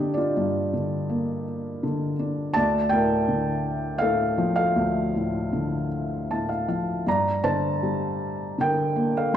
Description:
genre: classical, lyrical solo piano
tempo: 80 BPM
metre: 3/4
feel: uneven beats, rubato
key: G minor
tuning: A4 = 440 Hz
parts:
  - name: felt-muted upright piano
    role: solo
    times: 0.0-9.4 s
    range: D2 to Bb5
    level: -22 LUFS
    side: equal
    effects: none
room: moderate recital hall reverb, RT60 1.5 s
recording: dark, warm production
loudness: -22 LUFS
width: side -10 dB against mid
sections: 0.0-9.4 A section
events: felt piano fill 5.9-7.1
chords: 0.0 Gm7; 2.6 Dm; 7.1 Gm

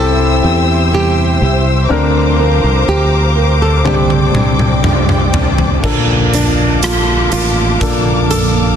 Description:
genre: pop ballad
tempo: 61 BPM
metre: 4/4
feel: straight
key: unclear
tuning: A4 = 443 Hz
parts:
  - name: nylon-string guitar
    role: melody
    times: 0.0-8.8 s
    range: D4 to A4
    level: -20 LUFS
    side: right 2 dB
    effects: ping-pong delay
  - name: warm concert grand piano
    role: accompaniment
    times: 0.0-8.8 s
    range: G2 to Bb4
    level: -19 LUFS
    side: left 5 dB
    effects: none
  - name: dark studio string section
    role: sustained chords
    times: 0.0-8.8 s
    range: Bb3 to E6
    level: -19 LUFS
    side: left 2 dB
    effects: none
  - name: fingerpicked steel-string acoustic guitar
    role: arpeggios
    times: 0.0-8.8 s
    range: Bb2 to Bb4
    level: -21 LUFS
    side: right 8 dB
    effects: none
  - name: fretless electric bass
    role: bass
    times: 0.0-8.8 s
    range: A1 to E2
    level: -14 LUFS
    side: equal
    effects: none
  - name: huge arena drum kit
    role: drums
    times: 3.9-8.5 s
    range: crash cymbal, hi-hat, kick drum, rim click, toms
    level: -15 LUFS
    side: equal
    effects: none
room: light reverb, small room ambience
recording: dense, heavily limited modern master, lossy compression artefacts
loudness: -10 LUFS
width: side -8 dB against mid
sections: 0.0-5.8 A section; 5.8-8.8 B section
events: drum fill 3.9-5.8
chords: 0.0 C; 1.9 Bbadd9; 3.9 Csus2; 5.8 Bbmaj7

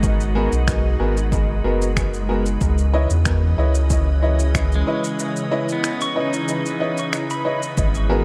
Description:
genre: ambient dub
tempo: 93 BPM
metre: 4/4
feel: straight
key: C# minor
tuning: A4 = 440 Hz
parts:
  - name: soft additive organ-like pad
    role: sustained chords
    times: 0.0-8.2 s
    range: C#3 to D#5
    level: -29 LUFS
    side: equal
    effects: ensemble chorus, built-in reverb
  - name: pedal steel guitar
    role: arpeggios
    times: 0.0-0.2, 4.8-8.2 s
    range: G#3 to C#6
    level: -31 LUFS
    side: equal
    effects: dub echo
  - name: soft dub sub bass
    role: bass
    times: 0.0-8.2 s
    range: F#1 to E2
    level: -21 LUFS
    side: equal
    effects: tube saturation
  - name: electronic cabasa and finger snaps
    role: drums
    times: 0.0-8.1 s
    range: none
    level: -31 LUFS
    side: equal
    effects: overdrive, studio reverb
  - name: electronic kick drum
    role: drums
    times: 0.0-7.9 s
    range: none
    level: -26 LUFS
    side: equal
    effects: overdrive, studio reverb
  - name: wind-like tuned noise texture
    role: texture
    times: 0.0-8.2 s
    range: D#5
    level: -39 LUFS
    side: equal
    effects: none
  - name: clear upright piano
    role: stabs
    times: 0.4-8.2 s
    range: B3 to D#5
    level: -27 LUFS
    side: equal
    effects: dub echo
room: light reverb, digital ambience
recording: none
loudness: -20 LUFS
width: mono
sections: 0.0-7.8 A section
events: break 5.2-7.8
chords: 0.0 G#m9; 2.6 C#m9

